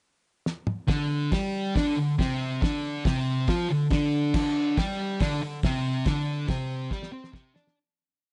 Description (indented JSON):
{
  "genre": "garage rock duo or trio",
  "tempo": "140 BPM",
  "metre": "4/4",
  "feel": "straight",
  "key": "unclear",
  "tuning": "A4 = 438 Hz",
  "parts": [
    { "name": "cloth-damped thuddy drum kit", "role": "drums", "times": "0.5-7.8 s", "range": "crash cymbal, hi-hat, kick drum, snare drum, toms", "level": "-30 LUFS", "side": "equal", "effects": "none" },
    { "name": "fuzz guitar", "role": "riff", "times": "0.9-7.8 s", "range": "C3 to D5", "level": "-28 LUFS", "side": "equal", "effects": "distortion" }
  ],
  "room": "little or no reverb",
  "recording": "nothing above 10.5 kHz",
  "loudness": "-27 LUFS",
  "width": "mono",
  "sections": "0.0-0.9 pickup bar; 0.9-7.8 riff",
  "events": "drum fill 0.5-0.9, 6.9-7.8; fade-out 6.1-7.8",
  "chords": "0.0 N.C.; 0.9 Csus2"
}